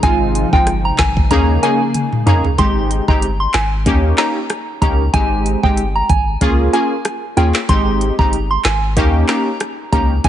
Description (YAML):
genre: dancehall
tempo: 94 BPM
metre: 4/4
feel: swing 56% on 16ths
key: Ab major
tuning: A4 = 440 Hz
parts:
  - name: soft synth bell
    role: melody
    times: 0.0-10.3 s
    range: G5 to C6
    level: -20 LUFS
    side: right 2 dB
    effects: chorus, digital delay
  - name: synth brass stab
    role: accompaniment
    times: 0.0-10.3 s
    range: Ab3 to Ab4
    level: -18 LUFS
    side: left 1 dB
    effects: chorus, sidechain pumping
  - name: hollow soft pad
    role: sustained chords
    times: 0.0-2.6 s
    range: C3 to Eb4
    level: -24 LUFS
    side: equal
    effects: ensemble chorus, sidechain pumping
  - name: punchy sub bass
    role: bass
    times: 0.0-10.3 s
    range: G1 to F2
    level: -18 LUFS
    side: equal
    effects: none
  - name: island pop drum kit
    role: drums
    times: 0.0-10.3 s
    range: handclaps, hi-hat, kick drum, rim click, snare drum, toms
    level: -18 LUFS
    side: equal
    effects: none
room: light reverb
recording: heavily compressed radio sound, nothing above 10.7 kHz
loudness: -13 LUFS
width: side -11 dB against mid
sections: 0.0-2.6 A section; 2.6-10.3 B section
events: drum fill 1.9-2.6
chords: 0.0 Fm7; 1.3 Eb7sus4; 2.6 Abmaj7; 3.9 Eb7; 5.1 Abmaj7; 6.4 Db6; 7.7 Abmaj7; 9.0 Eb7